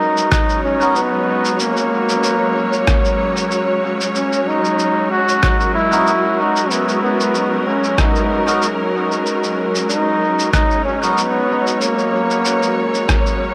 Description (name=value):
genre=ambient dub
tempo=94 BPM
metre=4/4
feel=swing 55% on 16ths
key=G# minor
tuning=A4 = 440 Hz
part: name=warm trombone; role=melody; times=0.0-13.5 s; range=A#3 to F#4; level=-20 LUFS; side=equal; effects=dub echo
part: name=muted studio string section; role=sustained chords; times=0.0-13.5 s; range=F#3 to C#5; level=-22 LUFS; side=equal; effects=none
part: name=electronic shaker and rim click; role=drums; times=0.2-13.4 s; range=none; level=-26 LUFS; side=equal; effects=dub echo
part: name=electronic kick drum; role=drums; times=0.3-13.2 s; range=none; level=-21 LUFS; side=equal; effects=overdrive
part: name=melodica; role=stabs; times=0.8-1.0, 5.9-11.2 s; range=B3 to A#4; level=-26 LUFS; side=equal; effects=none
room=moderate huge ambient reverb, RT60 4.8 s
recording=none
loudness=-17 LUFS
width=mono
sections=0.0-13.5 A section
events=none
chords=0.0 G#7sus2